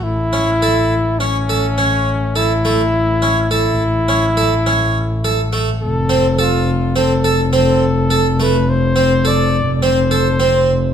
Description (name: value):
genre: contemporary instrumental, chamber music in an uneven meter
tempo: 104 BPM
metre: 5/4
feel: straight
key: unclear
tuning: A4 = 440 Hz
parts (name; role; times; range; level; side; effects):
- warm flugelhorn; melody; 0.0-10.9 s; C#4 to D5; -19 LUFS; left 2 dB; none
- warm double bass; bass; 0.0-10.9 s; F1 to A1; -17 LUFS; left 1 dB; none
- harpsichord; arpeggios; 0.3-10.7 s; A3 to A4; -17 LUFS; right 3 dB; none
room: wet recital hall reverb, RT60 1.6 s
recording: minimal, uncompressed stereo recording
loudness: -13 LUFS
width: side -8 dB against mid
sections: 0.0-10.9 A section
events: none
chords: 0.0 A; 5.8 F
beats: | 0.04 0.62 1.20 1.78 2.36 | 2.93 3.51 4.08 4.66 5.23 | 5.80 6.38 6.95 7.52 8.10 | 8.67 9.24 9.82 10.40